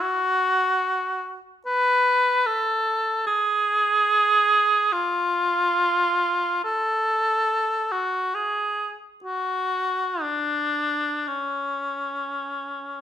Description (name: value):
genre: classical, free, expressive piece for unaccompanied cor anglais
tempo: free time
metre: none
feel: none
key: F# minor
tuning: A4 = 442 Hz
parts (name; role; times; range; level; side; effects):
- warm cor anglais; solo; 0.0-13.0 s; C#4 to B4; -20 LUFS; equal; none
room: light reverb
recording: minimal, uncompressed stereo recording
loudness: -20 LUFS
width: side -10 dB against mid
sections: 0.0-13.0 A section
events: none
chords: none